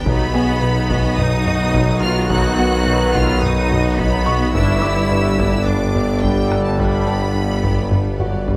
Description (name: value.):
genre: cinematic, hybrid orchestral and electronic film score.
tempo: 107 BPM.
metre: 4/4.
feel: straight.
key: unclear.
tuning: A4 = 440 Hz.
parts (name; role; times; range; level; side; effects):
rich symphonic violin section; melody; 0.0-8.5 s; G5 to F#6; -30 LUFS; equal; none.
warm symphonic violin section; second line; 0.0-8.6 s; D#4 to D#5; -32 LUFS; equal; none.
rich symphonic viola section; accompaniment; 0.0-8.6 s; F#3 to F#4; -29 LUFS; equal; none.
hollow soft pad; sustained chords; 0.0-8.6 s; G3 to D5; -31 LUFS; equal; none.
rich symphonic cello section; bass; 0.0-8.5 s; G3 to F#4; -27 LUFS; equal; none.
rich symphonic double bass section; bass; 0.0-8.6 s; G1 to B1; -25 LUFS; equal; none.
warm sub bass; bass; 0.0-8.6 s; G1 to B1; -30 LUFS; equal; none.
felt-muted upright piano; texture; 0.0-8.6 s; F#4 to D6; -33 LUFS; equal; none.
mellow French horn section; sustained chords; 0.1-8.6 s; G3 to B4; -30 LUFS; equal; none.
mellow trombone section; sustained chords; 0.1-8.6 s; D3 to G3; -30 LUFS; equal; none.
rubbery square bass; riff; 0.1-8.6 s; G2 to B3; -26 LUFS; equal; none.
warm tuba; bass; 0.1-8.6 s; G1 to B1; -26 LUFS; equal; none.
solo taiko drums; drums; 0.1-8.6 s; none; -26 LUFS; equal; none.
room: moderate recital hall reverb, RT60 1.4 s.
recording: none.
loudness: -17 LUFS.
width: mono.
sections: 0.0-8.6 A section.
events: none.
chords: 0.1 B; 4.6 G.